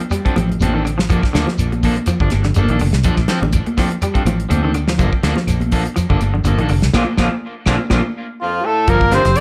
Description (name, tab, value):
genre	afrobeat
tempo	123 BPM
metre	4/4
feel	swing 54% on 16ths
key	G minor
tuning	A4 = 440 Hz
part	electric guitar at the edge of break-up	arpeggios	0.0-9.4 s	Bb2 to G3	-24 LUFS	equal	none
part	electric guitar at the edge of break-up	stabs	0.0-9.3 s	F3 to A4	-26 LUFS	equal	tape echo
part	damped 70s drum kit	drums	0.0-9.4 s	hi-hat, kick drum, snare drum	-22 LUFS	equal	none
part	claves	percussion	0.1-9.4 s	none	-37 LUFS	equal	none
part	congas	percussion	0.1-9.4 s	none	-26 LUFS	equal	none
part	shekere	percussion	0.1-8.0 s	none	-26 LUFS	equal	none
part	fingered electric bass	bass	0.4-9.3 s	F1 to D2	-20 LUFS	equal	none
part	warm trumpet	melody	8.4-9.4 s	F4 to D5	-18 LUFS	equal	none
part	growling bass trombone	second line	8.4-9.4 s	F2 to D3	-25 LUFS	equal	none
part	raspy tenor saxophone	second line	8.4-9.4 s	F3 to C4	-26 LUFS	equal	none
room	light reverb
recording	none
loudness	-17 LUFS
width	mono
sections	0.0-8.9 A section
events	band accent 6.9-8.9; drum fill 8.5-8.9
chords	0.0 Bbmaj9 (rootless); 1.1 Gm9; 3.0 Bbmaj9 (rootless); 5.0 Gm9; 6.9 Bb; 8.9 Gm9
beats	0.12 0.61 | 1.09 1.58 2.07 2.56 | 3.04 3.53 4.02 4.51 | 4.99 5.48 5.97 6.45 | 6.94 7.42 7.91 8.39 | 8.88 9.36